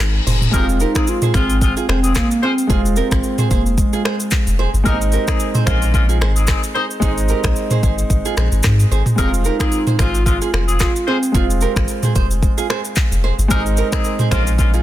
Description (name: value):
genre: afrobeats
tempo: 111 BPM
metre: 4/4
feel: swing 55% on 16ths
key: unclear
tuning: A4 = 440 Hz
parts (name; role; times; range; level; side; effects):
- warm concert grand piano; accompaniment; 0.0-14.8 s; Eb3 to Ab4; -24 LUFS; right 1 dB; none
- warm analog pad; sustained chords; 0.0-0.5 s; Eb3 to Ab4; -37 LUFS; right 2 dB; none
- punchy sub bass; bass; 0.0-14.8 s; F1 to Ab2; -18 LUFS; equal; none
- afro-pop drum kit; drums; 0.0-14.8 s; finger snaps, handclaps, hi-hat, kick drum, rim click, shaker, toms; -18 LUFS; equal; soft clipping on snare
- reverse cymbal; sound effects; 0.1-0.5 s; none; -26 LUFS; left 6 dB; none
- nylon-string guitar; riff; 0.3-14.8 s; Eb4 to C5; -25 LUFS; right 8 dB; digital delay
- hollow clarinet-like synth lead; melody; 0.5-4.6, 9.2-11.6 s; Ab3 to F4; -21 LUFS; equal; chorus
- clear horn section; second line; 0.5-14.7 s; Ab3 to C5; -24 LUFS; left 4 dB; none
room: little or no reverb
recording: dense, heavily limited modern master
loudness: -14 LUFS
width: side -13 dB against mid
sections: 0.5-14.8 A section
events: reverse cymbal 0.1-0.5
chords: 0.0 Ab; 0.5 Fm; 4.9 Ab; 9.2 Fm; 13.5 Ab